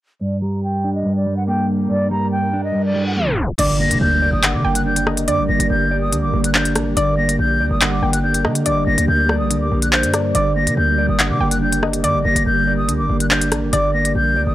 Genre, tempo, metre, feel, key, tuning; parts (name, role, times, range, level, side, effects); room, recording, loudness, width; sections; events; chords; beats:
hip hop, drill; 142 BPM; 4/4; half-time; G harmonic minor; A4 = 440 Hz
mellow silver concert flute; melody; 0.2-14.5 s; D5 to Bb6; -22 LUFS; left 1 dB; low-pass filter
mellow electric guitar; accompaniment; 0.2-14.5 s; G2 to D5; -20 LUFS; equal; low-pass filter
ethereal airy pad; sustained chords; 0.8-14.5 s; G2 to D5; -27 LUFS; right 2 dB; ensemble chorus, built-in reverb, low-pass filter
reverse cymbal and impact; sound effects; 2.9-5.3 s; -27 LUFS; left 1 dB
soft round pluck; second line; 3.6-14.5 s; C5 to G5; -24 LUFS; equal; chorus, analog delay
hard-hitting 808-style bass; bass; 3.6-14.5 s; F#1 to D3; -21 LUFS; equal
drill drum kit; drums; 3.6-14.1 s; crash cymbal, handclaps, hi-hat, rim click; -19 LUFS; left 1 dB
little or no reverb; dry, gritty hardware recording, tape stop; -15 LUFS; side -14 dB against mid
0.2-3.6 A section; 3.6-14.5 B section
filter sweep 0.2-3.6; reverse cymbal 2.9-3.6; tape stop 3.2-3.6; impact 3.6-5.3
0.2 Gm
| 0.21 0.63 1.05 1.48 | 1.90 2.32 2.74 3.17 | 3.59 4.01 4.43 4.86 | 5.28 5.70 6.12 6.55 | 6.97 7.39 7.81 8.24 | 8.66 9.08 9.50 9.93 | 10.35 10.77 11.19 11.62 | 12.04 12.46 12.88 13.31 | 13.73 14.15